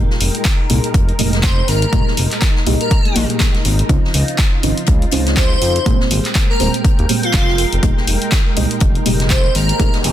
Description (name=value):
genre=deep house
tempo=122 BPM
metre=4/4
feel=swing 58% on 16ths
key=F minor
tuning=A4 = 440 Hz
part: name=soft string machine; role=sustained chords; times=0.0-10.1 s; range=Ab3 to G5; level=-26 LUFS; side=left 1 dB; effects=phaser, ensemble chorus, sidechain pumping
part: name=deep mellow chord stab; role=stabs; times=0.0-10.1 s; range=Bb3 to Eb5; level=-21 LUFS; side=right 1 dB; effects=chorus, phaser, sidechain pumping, tape echo
part: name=smooth synth bass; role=bass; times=0.0-10.1 s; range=Eb1 to F2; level=-18 LUFS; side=equal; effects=sidechain pumping
part: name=open jazz drum kit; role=drums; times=0.1-10.1 s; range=hi-hat, snare drum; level=-29 LUFS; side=left 3 dB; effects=none
part: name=punchy analog drum machine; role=drums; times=0.2-10.1 s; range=handclaps, hi-hat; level=-21 LUFS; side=left 1 dB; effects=none
part: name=electronic kick drum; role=drums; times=0.5-9.9 s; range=none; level=-15 LUFS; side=equal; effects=none
part: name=airy dreamy lead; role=melody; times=1.4-9.9 s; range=F4 to C5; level=-22 LUFS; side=equal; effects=chorus, dub echo
part: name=noise sweep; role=sound effects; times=10.0-10.1 s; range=none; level=-26 LUFS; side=right 5 dB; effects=none
room=light reverb, digital ambience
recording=dense, heavily limited modern master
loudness=-13 LUFS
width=side -12 dB against mid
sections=0.0-10.1 A section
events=filter sweep on synth stab 0.0-10.1; noise sweep 10.0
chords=0.0 Fm11; 3.9 Dbmaj9; 5.9 Fm11